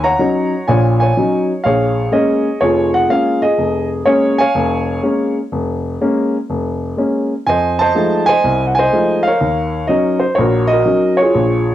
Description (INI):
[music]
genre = solo jazz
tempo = 124 BPM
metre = 4/4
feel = swing 67% on 8ths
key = Bb minor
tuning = A4 = 439 Hz
[part]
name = warm grand piano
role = solo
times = 0.0-11.7 s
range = F1 to Bb5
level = -13 LUFS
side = equal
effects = none
[sound]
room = moderate studio reverb, RT60 0.6 s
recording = home recording on cassette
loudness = -13 LUFS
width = side -12 dB against mid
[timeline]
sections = 0.0-11.7 A section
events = none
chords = 0.0 Ebm7; 1.6 Bbm7; 7.5 F7#9; 9.4 Ebm7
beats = 0.18 0.67 1.15 | 1.64 2.12 2.61 3.09 | 3.58 4.07 4.55 5.04 | 5.52 6.01 6.49 6.98 | 7.46 7.95 8.44 8.92 | 9.41 9.89 10.38 10.86 | 11.35